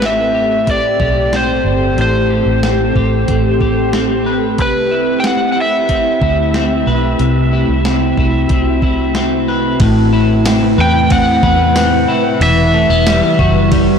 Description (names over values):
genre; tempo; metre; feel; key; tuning
dream pop; 92 BPM; 4/4; straight; A dorian; A4 = 437 Hz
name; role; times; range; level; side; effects
overdriven slide guitar; melody; 0.0-13.7 s; B4 to G5; -17 LUFS; equal; ping-pong delay
ethereal airy pad; sustained chords; 0.0-14.0 s; C3 to B4; -17 LUFS; equal; ensemble chorus, built-in reverb
electric guitar at the edge of break-up; arpeggios; 0.0-14.0 s; A2 to B4; -17 LUFS; left 2 dB; analog chorus, ping-pong delay
vintage muted fingered electric bass; bass; 0.0-14.0 s; E1 to E2; -17 LUFS; equal; none
clean 12-bit digital drum machine; drums; 0.0-13.9 s; hi-hat, kick drum, ride cymbal, snare drum, tambourine; -19 LUFS; equal; overdrive
room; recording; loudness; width
moderate huge ambient reverb, RT60 4.0 s; blown-out, overdriven recording, overdrive; -11 LUFS; side -6 dB against mid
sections
0.0-9.8 A section; 9.8-14.0 B section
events
none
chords
0.0 Am9; 4.6 Cmaj7; 9.8 Amadd9; 12.4 Emadd9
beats
0.02 0.67 1.33 | 1.98 2.63 3.28 3.93 | 4.59 5.24 5.89 6.54 | 7.20 7.85 8.50 9.15 | 9.80 10.46 11.11 11.76 | 12.41 13.06 13.72